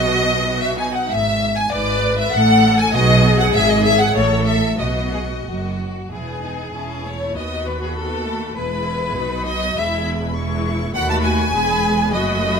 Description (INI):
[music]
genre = quick classical-period movement for string orchestra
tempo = 90-103 BPM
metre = 2/4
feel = rubato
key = E major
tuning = A4 = 445 Hz
[part]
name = rich chamber violin section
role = melody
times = 0.0-12.6 s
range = C#5 to C#6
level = -22 LUFS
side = left 4 dB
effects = none
[part]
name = clear chamber violin section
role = second line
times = 0.0-12.6 s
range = F#4 to A5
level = -22 LUFS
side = equal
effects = none
[part]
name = clear studio viola section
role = accompaniment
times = 0.0-12.6 s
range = F#3 to B4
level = -24 LUFS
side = left 1 dB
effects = none
[part]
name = clear chamber double bass section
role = bass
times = 0.0-12.6 s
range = E1 to D#2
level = -23 LUFS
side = right 3 dB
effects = none
[part]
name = rich chamber cello section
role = bass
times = 0.0-12.6 s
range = D#2 to B2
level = -23 LUFS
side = right 1 dB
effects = none
[sound]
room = light reverb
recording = close, detailed microphones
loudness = -16 LUFS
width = side -6 dB against mid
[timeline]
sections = 0.0-6.1 A section; 6.1-12.6 B section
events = none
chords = 0.0 B; 1.1 E/G#; 2.3 F#madd9/A; 2.9 B; 3.5 Emaj9/G#; 4.2 A; 4.8 B; 6.1 E; 6.7 Amaj7/E; 7.4 B7/D#; 8.6 E; 9.2 B; 9.8 E; 10.9 B7/D#; 11.5 E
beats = 0.47 | 1.10 1.72 | 2.33 2.95 | 3.55 4.16 | 4.80 5.47 | 6.12 6.74 | 7.35 7.96 | 8.57 9.17 | 9.77 10.36 | 10.95 11.53 | 12.13